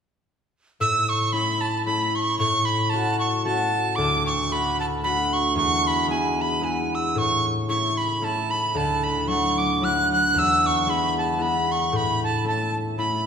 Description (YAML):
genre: celtic folk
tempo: 113 BPM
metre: 3/4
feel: swing 54% on 8ths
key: A major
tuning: A4 = 438 Hz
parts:
  - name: breathy bright mid whistle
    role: melody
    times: 0.8-13.3 s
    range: G#5 to F#6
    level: -22 LUFS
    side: right 2 dB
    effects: none
  - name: concert harp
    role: accompaniment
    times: 0.8-13.3 s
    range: D2 to F#4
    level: -24 LUFS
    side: left 2 dB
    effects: none
room: wet recital hall reverb, RT60 1.7 s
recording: recorded in a church or concert hall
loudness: -20 LUFS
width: side -7 dB against mid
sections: 0.8-13.3 A section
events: none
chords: 0.8 A; 2.4 F#m/A; 4.0 D; 5.6 E; 7.2 A; 8.7 Dadd9; 10.3 E; 11.9 A